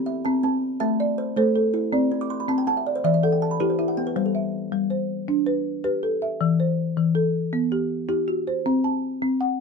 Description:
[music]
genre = southern african traditional, mbira-style interlocking cycle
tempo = 107 BPM (dotted quarters)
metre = 12/8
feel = straight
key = G major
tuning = A4 = 440 Hz
[part]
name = folk marimba with soft mallets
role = arpeggios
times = 0.0-9.6 s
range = E3 to A5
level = -22 LUFS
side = left 2 dB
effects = none
[part]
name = kalimba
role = arpeggios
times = 0.0-4.4 s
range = E3 to D6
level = -27 LUFS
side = right 4 dB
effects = none
[sound]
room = light reverb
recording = close, detailed microphones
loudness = -21 LUFS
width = side -5 dB against mid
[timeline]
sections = 0.0-4.2 A section; 4.2-9.6 B section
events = kalimba fill 2.0-4.2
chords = 0.0 C; 0.8 Am; 1.9 C; 3.0 Em; 4.2 G; 6.4 Em; 8.7 F#dim/C

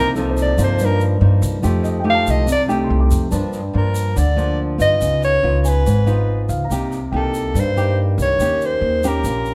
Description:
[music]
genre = bossa nova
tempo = 142 BPM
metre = 4/4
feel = straight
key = unclear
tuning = A4 = 440 Hz
[part]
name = warm soprano saxophone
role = melody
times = 0.0-9.5 s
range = A4 to F5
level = -22 LUFS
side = equal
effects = none
[part]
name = nylon-string guitar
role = accompaniment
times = 0.0-9.5 s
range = G2 to G4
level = -23 LUFS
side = equal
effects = none
[part]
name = upright bass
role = bass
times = 0.0-9.5 s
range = G#1 to G2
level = -22 LUFS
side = equal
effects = none
[part]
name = warm concert grand piano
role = accompaniment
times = 0.2-8.6 s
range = A4 to D6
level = -32 LUFS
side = equal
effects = none
[part]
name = tube shaker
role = percussion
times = 0.2-9.5 s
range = none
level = -38 LUFS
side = equal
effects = none
[sound]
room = moderate large studio reverb, RT60 1.3 s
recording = none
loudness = -18 LUFS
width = mono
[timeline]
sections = 0.0-3.3 A section; 3.3-9.5 B section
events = soprano saxophone solo 0.0-3.3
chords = 0.0 Cm7; 1.6 F9; 3.3 Gm7; 5.0 C#9; 6.7 Cm7; 8.4 Eb7

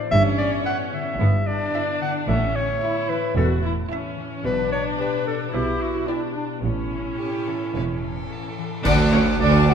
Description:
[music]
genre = cinematic, playful, whimsical film cue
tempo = 110 BPM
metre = 4/4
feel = straight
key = unclear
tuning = A4 = 445 Hz
[part]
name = concert harp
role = arpeggios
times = 0.0-9.7 s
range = G2 to A5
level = -30 LUFS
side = left 9 dB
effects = none
[part]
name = clear clarinet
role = second line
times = 0.1-8.5 s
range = D4 to F#5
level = -25 LUFS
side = left 1 dB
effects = none
[part]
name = rich chamber viola section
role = accompaniment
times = 0.1-9.7 s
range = B3 to F#4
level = -28 LUFS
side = right 1 dB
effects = none
[part]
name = clear chamber cello section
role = bass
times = 0.1-9.7 s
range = D2 to B2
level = -24 LUFS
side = right 2 dB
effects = none
[part]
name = clear chamber double bass section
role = bass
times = 0.1-9.7 s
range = E1 to D2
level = -26 LUFS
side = right 3 dB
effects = none
[part]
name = clear chamber violin section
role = melody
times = 0.7-9.7 s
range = G5 to D6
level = -33 LUFS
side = left 6 dB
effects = none
[part]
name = rich chamber violin section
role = second line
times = 0.7-9.7 s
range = E4 to A5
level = -32 LUFS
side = equal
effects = none
[part]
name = cymbal swell, clash cymbals and concert bass drum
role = percussion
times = 4.5-9.7 s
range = none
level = -28 LUFS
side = equal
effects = none
[part]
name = dark French horn section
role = sustained chords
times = 8.8-9.7 s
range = A3 to F#4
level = -30 LUFS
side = left 5 dB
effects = none
[part]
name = clear oboe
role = second line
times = 8.9-9.7 s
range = D5 to F#5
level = -28 LUFS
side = right 2 dB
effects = none
[part]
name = flute section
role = second line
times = 8.9-9.7 s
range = C#5 to F#5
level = -28 LUFS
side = equal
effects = none
[part]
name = mellow tuba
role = bass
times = 8.9-9.7 s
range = D2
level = -24 LUFS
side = right 5 dB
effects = none
[sound]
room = moderate scoring stage reverb, RT60 1.9 s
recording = minimal, uncompressed stereo recording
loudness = -20 LUFS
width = side -7 dB against mid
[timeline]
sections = 0.0-8.9 A section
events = band accent 8.9-9.4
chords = 0.1 Em7/G; 2.3 A; 4.4 G/B; 6.6 A; 8.9 D

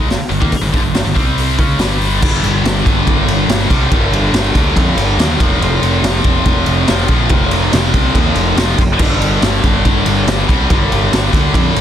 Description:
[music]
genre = hard rock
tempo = 142 BPM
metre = 4/4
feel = straight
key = unclear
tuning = A4 = 440 Hz
[part]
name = scooped high-gain guitar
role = riff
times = 0.0-11.8 s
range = F2 to C#4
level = -16 LUFS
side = left 2 dB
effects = distortion
[part]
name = fuzz picked electric bass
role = bass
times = 0.0-11.8 s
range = F1 to F2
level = -17 LUFS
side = equal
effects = overdrive
[part]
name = raw garage drum kit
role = drums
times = 0.1-11.8 s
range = crash cymbal, hi-hat, kick drum, ride cymbal, snare drum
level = -15 LUFS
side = equal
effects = none
[sound]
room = little or no reverb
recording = dense, heavily limited modern master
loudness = -11 LUFS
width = side -10 dB against mid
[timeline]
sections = 0.0-2.2 A section; 2.2-11.8 B section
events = none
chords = 0.0 G5; 1.2 C5; 1.6 G5; 5.4 F5; 9.0 G5

